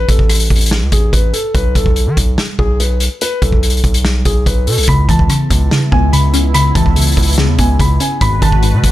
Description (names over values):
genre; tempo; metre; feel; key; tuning
hip hop, trap; 144 BPM; 4/4; half-time; C# minor; A4 = 440 Hz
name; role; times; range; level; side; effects
dark concert grand piano; melody; 0.0-8.9 s; G#4 to B5; -20 LUFS; equal; low-pass filter, ping-pong delay
distorted 808-style bass; bass; 0.0-8.9 s; G#1 to D#3; -14 LUFS; equal; distortion
vintage drum kit; drums; 0.1-8.9 s; hi-hat, kick drum, rim click, snare drum; -14 LUFS; equal; none
soft round pluck; accompaniment; 4.9-8.9 s; G#2 to C#4; -15 LUFS; left 1 dB; chorus, low-pass filter
warm analog pad; sustained chords; 4.9-8.9 s; C#3 to B4; -22 LUFS; equal; chorus
room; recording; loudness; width
small room ambience; none; -10 LUFS; side -15 dB against mid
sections
0.0-4.9 A section; 4.9-8.9 B section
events
break 0.0-4.9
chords
0.0 N.C.; 1.5 B7(no3); 4.9 C#m7; 8.2 G#m7